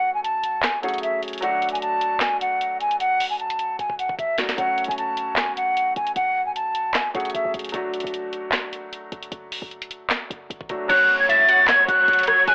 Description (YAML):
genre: hip hop, trap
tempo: 152 BPM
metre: 4/4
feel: half-time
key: F# minor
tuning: A4 = 442 Hz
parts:
  - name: reedy concert flute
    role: melody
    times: 0.0-7.5, 10.9-12.5 s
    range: E5 to A6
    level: -19 LUFS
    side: equal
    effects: cassette tape
  - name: bright grand piano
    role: accompaniment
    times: 0.0-12.5 s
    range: F#3 to G#4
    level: -32 LUFS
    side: equal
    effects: cassette tape
  - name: trap drum kit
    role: drums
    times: 0.2-12.5 s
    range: crash cymbal, handclaps, hi-hat, kick drum, rim click, snare drum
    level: -25 LUFS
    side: equal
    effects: cassette tape
  - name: short 808-style bass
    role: bass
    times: 4.6-12.5 s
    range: F#1 to C#2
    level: -36 LUFS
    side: equal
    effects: none
  - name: glassy wavetable pluck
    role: second line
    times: 10.9-12.5 s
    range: C#5 to G#5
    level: -26 LUFS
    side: equal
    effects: chorus, cassette tape, analog delay
  - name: warm symphonic string section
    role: sustained chords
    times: 10.9-12.5 s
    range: F#3 to C#5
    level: -26 LUFS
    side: equal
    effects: cassette tape
  - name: downlifter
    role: sound effects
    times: 10.9-12.5 s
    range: none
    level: -36 LUFS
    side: equal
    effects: none
room: light reverb, digital ambience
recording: home recording on cassette, telephone sound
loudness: -19 LUFS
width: side -36 dB against mid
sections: 0.0-10.9 A section; 10.9-12.5 B section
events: break 0.0-4.6, 7.7-10.9; drum fill 3.8-4.6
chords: 0.0 F#m; 1.4 D/F#; 4.6 F#m; 7.7 D/F#; 10.9 F#m